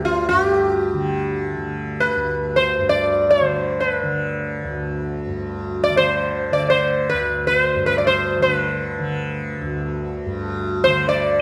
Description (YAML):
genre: indian classical, Hindustani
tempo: free time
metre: none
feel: none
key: unclear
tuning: A4 = 439 Hz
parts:
  - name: sitar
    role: melody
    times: 0.0-11.4 s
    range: F4 to D5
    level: -20 LUFS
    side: equal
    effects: none
  - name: tanpura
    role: drone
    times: 0.0-11.4 s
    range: D2 to D3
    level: -27 LUFS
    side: equal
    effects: none
room: moderate recital hall reverb, RT60 1.4 s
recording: none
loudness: -20 LUFS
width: mono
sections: 0.0-11.4 A section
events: none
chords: none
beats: free time